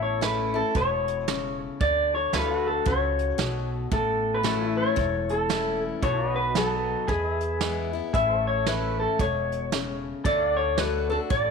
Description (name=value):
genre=honky-tonk and classic country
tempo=114 BPM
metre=4/4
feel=swing 61% on 8ths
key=A major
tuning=A4 = 440 Hz
part: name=electric guitar through a small old amp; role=melody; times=0.0-11.5 s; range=G#4 to E5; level=-26 LUFS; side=equal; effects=none
part: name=picked steel-string acoustic guitar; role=accompaniment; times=0.0-11.5 s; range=E2 to F#4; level=-31 LUFS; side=left 10 dB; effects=none
part: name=pedal steel guitar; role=sustained chords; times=0.0-11.5 s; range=E4 to F#5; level=-35 LUFS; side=left 1 dB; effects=lush chorus
part: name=upright bass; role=bass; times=0.0-11.5 s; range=E1 to E2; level=-32 LUFS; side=right 1 dB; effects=none
part: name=soft brush drum kit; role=drums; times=0.2-11.5 s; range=hi-hat, kick drum, snare drum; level=-30 LUFS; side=right 5 dB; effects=none
room=light reverb, studio reverb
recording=1960s-style stereo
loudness=-23 LUFS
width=side -5 dB against mid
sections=0.0-11.5 A section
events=none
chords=0.0 A; 1.8 D; 3.9 A; 6.0 B; 7.1 E; 8.1 A; 10.2 D